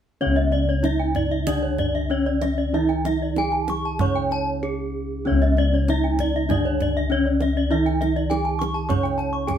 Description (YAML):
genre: Balinese gamelan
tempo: 96 BPM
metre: 4/4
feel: uneven beats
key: C# pelog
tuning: A4 = 439 Hz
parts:
  - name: gamelan-type bronze metallophone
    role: melody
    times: 0.2-9.6 s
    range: C#4 to C#5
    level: -25 LUFS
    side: equal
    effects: none
  - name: gamelan-type bronze metallophone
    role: accompaniment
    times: 0.2-9.6 s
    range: C#3 to C#4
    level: -31 LUFS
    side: right 3 dB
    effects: none
  - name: gamelan-type bronze metallophone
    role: arpeggios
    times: 0.2-9.6 s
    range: C#5 to C#6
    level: -27 LUFS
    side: left 2 dB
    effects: none
  - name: gamelan-type bossed gongs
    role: bass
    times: 0.2-9.6 s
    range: C#2 to E4-50c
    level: -24 LUFS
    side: left 1 dB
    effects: none
  - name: gamelan-type bronze metallophone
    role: arpeggios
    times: 0.4-9.2 s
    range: C#5 to A5-40c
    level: -30 LUFS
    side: right 3 dB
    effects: none
  - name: kendang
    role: percussion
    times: 0.4-9.6 s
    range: none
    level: -28 LUFS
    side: right 3 dB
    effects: none
room: moderate studio reverb, RT60 0.8 s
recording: band playing live in one room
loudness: -20 LUFS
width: side -9 dB against mid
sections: 0.2-9.6 A section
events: break 4.3-5.3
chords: none